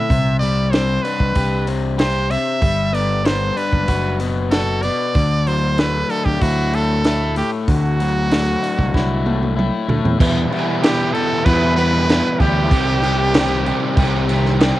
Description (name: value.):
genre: indie rock.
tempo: 95 BPM.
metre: 4/4.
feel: straight.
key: unclear.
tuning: A4 = 444 Hz.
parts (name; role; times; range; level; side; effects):
brilliant trumpet; melody; 0.0-14.3 s; F#4 to E5; -21 LUFS; right 2 dB; cassette tape.
overdriven semi-hollow guitar; riff; 0.0-14.8 s; E2 to G4; -22 LUFS; left 5 dB; cassette tape.
fingered electric bass; bass; 0.1-14.7 s; F#1 to E2; -20 LUFS; equal; none.
compact cocktail drum kit; drums; 0.1-14.8 s; crash cymbal, hi-hat, kick drum, snare drum, toms; -20 LUFS; right 1 dB; none.
sludgy distorted guitar; riff; 10.2-14.8 s; E2 to G4; -22 LUFS; right 5 dB; overdrive, ensemble chorus, cassette tape.
glockenspiel with soft plastic mallets; second line; 10.8-14.3 s; G6 to B6; -34 LUFS; left 6 dB; none.
room: small room reverb.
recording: home recording on cassette.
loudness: -15 LUFS.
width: side -15 dB against mid.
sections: 0.0-10.2 A section; 10.2-14.8 B section.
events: drum fill 8.9-10.2.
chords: 0.1 Csus2; 2.6 Gmaj7; 5.1 Dadd9; 10.2 Em; 12.7 Cm.